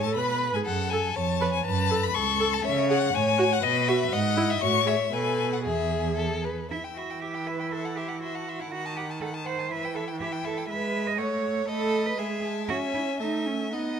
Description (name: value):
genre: quick classical-period movement for string quartet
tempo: 120 BPM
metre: 2/4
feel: rubato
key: E major, E minor from 6.7 s, E major from 10.7 s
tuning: A4 = 440 Hz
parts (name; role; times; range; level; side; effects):
- rich violin; melody; 0.0-14.0 s; D#5 to E6; -30 LUFS; left 11 dB; none
- rich violin; second line; 0.0-14.0 s; G#4 to A5; -31 LUFS; left 4 dB; none
- rich viola; accompaniment; 0.0-14.0 s; D#3 to B4; -30 LUFS; right 2 dB; none
- rich cello; bass; 0.0-14.0 s; C#2 to D#5; -30 LUFS; right 5 dB; none
room: moderate scoring stage reverb, RT60 1.7 s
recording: close, detailed microphones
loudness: -24 LUFS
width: side -7 dB against mid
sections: 0.0-6.7 A section; 6.7-14.0 B section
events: none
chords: 0.0 G#madd11; 0.7 F#m; 1.2 C#7/E#; 1.7 F#m; 2.6 C#m; 3.1 F#m/A; 3.6 B; 4.1 E/G#; 4.6 F#m7/A; 5.1 F#madd11/B; 5.7 E; 6.7 Em; 7.7 F#m7b5/E; 8.7 B7/D#; 9.7 Em; 10.7 E/G#; 11.2 F#m/A; 11.7 B7/A; 12.2 E/G#; 12.7 C#m; 13.2 A